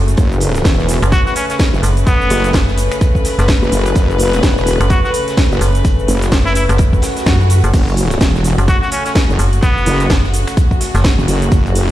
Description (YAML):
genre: bass house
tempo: 127 BPM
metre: 4/4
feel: swing 59% on 16ths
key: F# minor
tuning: A4 = 440 Hz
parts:
  - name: dark chamber string section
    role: sustained chords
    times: 0.0-11.9 s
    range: C#3 to B4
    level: -20 LUFS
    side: left 1 dB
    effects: sidechain pumping
  - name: metallic FM bass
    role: bass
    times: 0.0-11.2 s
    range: F#1 to F#2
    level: -14 LUFS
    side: equal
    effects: tube saturation, sidechain pumping
  - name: house drum kit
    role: drums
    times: 0.1-11.9 s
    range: cabasa, crash cymbal, finger snaps, hi-hat, snare drum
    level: -21 LUFS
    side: equal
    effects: none
  - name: wobble bass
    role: bass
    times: 0.2-11.9 s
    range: E1 to F#1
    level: -15 LUFS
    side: equal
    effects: chorus, tube saturation, sidechain pumping
  - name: electronic kick drum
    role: drums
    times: 0.2-11.6 s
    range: none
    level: -14 LUFS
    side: equal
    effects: none
  - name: vintage drum kit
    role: drums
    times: 0.2-11.9 s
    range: hi-hat, snare drum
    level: -31 LUFS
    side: right 1 dB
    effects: none
  - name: trumpet with straight mute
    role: melody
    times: 1.1-10.1 s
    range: B3 to F#4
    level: -20 LUFS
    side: equal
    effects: digital delay
  - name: swell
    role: sound effects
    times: 6.9-7.7 s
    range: none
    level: -24 LUFS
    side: right 1 dB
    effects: none
room: small room ambience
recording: played on a big sound system in a bare room, stone room reverb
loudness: -11 LUFS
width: side -14 dB against mid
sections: 0.0-11.9 A section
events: swell 6.9-7.7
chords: 0.0 F#m